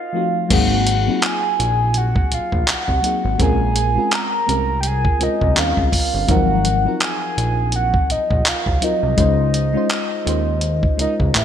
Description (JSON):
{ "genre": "contemporary R&B", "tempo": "83 BPM", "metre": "4/4", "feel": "swing 58% on 16ths", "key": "unclear", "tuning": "A4 = 440 Hz", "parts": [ { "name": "soft octave-layered synth lead", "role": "melody", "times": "0.0-11.4 s", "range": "Eb5 to Bb5", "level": "-21 LUFS", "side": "right 1 dB", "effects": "chorus, phaser, digital delay" }, { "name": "mellow FM electric piano", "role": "accompaniment", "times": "0.1-11.4 s", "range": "F3 to C5", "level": "-23 LUFS", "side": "left 3 dB", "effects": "chorus, phaser" }, { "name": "fat analog bass", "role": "bass", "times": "0.5-11.4 s", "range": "G1 to Eb2", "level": "-20 LUFS", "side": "equal", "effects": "none" }, { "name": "dusty soul sampler-style drum kit", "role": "drums", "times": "0.5-11.4 s", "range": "crash cymbal, handclaps, hi-hat, kick drum", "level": "-20 LUFS", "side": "equal", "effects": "gated reverb" } ], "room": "light reverb", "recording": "bright 1980s-style digital production", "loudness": "-16 LUFS", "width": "side -9 dB against mid", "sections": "0.5-11.4 A section", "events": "break 0.0-0.5", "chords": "0.0 F7b9; 0.5 Ab9; 3.4 Bbm9; 5.6 Eb13; 6.3 Ab13; 9.2 Dbmaj9" }